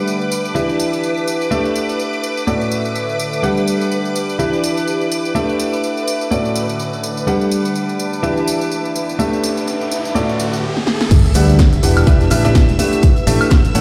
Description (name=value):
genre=piano house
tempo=125 BPM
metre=4/4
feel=swing 58% on 16ths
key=unclear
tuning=A4 = 445 Hz
part: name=string machine, violins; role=sustained chords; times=0.0-13.8 s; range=B4 to E6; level=-27 LUFS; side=equal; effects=ensemble chorus, sidechain pumping
part: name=clear concert grand piano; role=riff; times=0.0-13.8 s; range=A2 to F#5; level=-21 LUFS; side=equal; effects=sidechain pumping
part: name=warbly tape-like pad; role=texture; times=0.0-13.8 s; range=D3 to B5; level=-29 LUFS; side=equal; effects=chorus, built-in reverb, phaser, sidechain pumping
part: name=punchy analog drum machine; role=drums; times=0.1-13.8 s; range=crash cymbal, hi-hat, snare drum, tambourine, woodblock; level=-27 LUFS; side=equal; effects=overdrive, studio reverb
part: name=riser and impact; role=sound effects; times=9.1-13.0 s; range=none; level=-25 LUFS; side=equal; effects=none
part: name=fingered electric bass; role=bass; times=11.1-13.8 s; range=E1 to D2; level=-17 LUFS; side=equal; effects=tube saturation, sidechain pumping
part: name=electronic kick drum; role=drums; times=11.1-13.6 s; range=none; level=-14 LUFS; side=equal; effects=studio reverb
part: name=tight funk drum kit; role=drums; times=11.1-13.8 s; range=hi-hat, snare drum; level=-37 LUFS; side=equal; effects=none
room=moderate lush hall reverb, RT60 1.9 s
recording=played on a big sound system in a bare room, stone room reverb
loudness=-16 LUFS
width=mono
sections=0.0-11.1 A section; 11.1-13.8 B section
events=riser 9.1-11.1; drum fill 10.8-11.1; drop 11.1-13.8; impact 11.1-13.0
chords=0.0 Gmaj7; 0.6 Em7; 1.5 A7sus4; 2.5 Dmaj7/A; 3.4 Gmaj7; 4.4 Em7; 5.3 A7sus4; 6.3 Dmaj7/A; 7.3 Gmaj7; 8.2 Em7; 9.2 A7sus4; 10.2 Dmaj7/A; 11.1 Em7; 13.0 A7sus4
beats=0.07 0.55 1.03 | 1.51 1.99 2.47 2.95 | 3.43 3.91 4.39 4.87 | 5.35 5.83 6.31 6.79 | 7.27 7.75 8.23 8.71 | 9.19 9.67 10.15 10.63 | 11.11 11.59 12.07 12.55 | 13.03 13.51